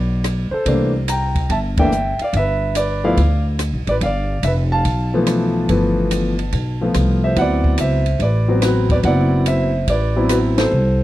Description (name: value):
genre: jazz piano trio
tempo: 143 BPM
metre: 4/4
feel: swing 67% on 8ths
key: G mixolydian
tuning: A4 = 440 Hz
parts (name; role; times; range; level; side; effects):
- warm concert grand piano; melody; 0.0-11.0 s; E3 to Bb5; -18 LUFS; equal; slapback echo
- upright bass; bass; 0.0-11.0 s; F1 to D2; -18 LUFS; equal; none
- compact cocktail drum kit; drums; 0.2-10.6 s; hi-hat, kick drum, ride cymbal, rim click, snare drum; -25 LUFS; equal; none
room: small room ambience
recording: dry, close 1970s-style studio recording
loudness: -15 LUFS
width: side -15 dB against mid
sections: 0.0-11.0 A section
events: band accent 1.7, 10.5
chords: 0.0 G (rootless); 0.7 C13; 2.3 G13; 7.4 D13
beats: 0.24 | 0.66 1.08 1.50 1.92 | 2.34 2.76 3.18 3.60 | 4.01 4.43 4.85 5.27 | 5.69 6.11 6.53 6.95 | 7.37 7.79 8.21 8.63 | 9.05 9.47 9.88 10.30 | 10.72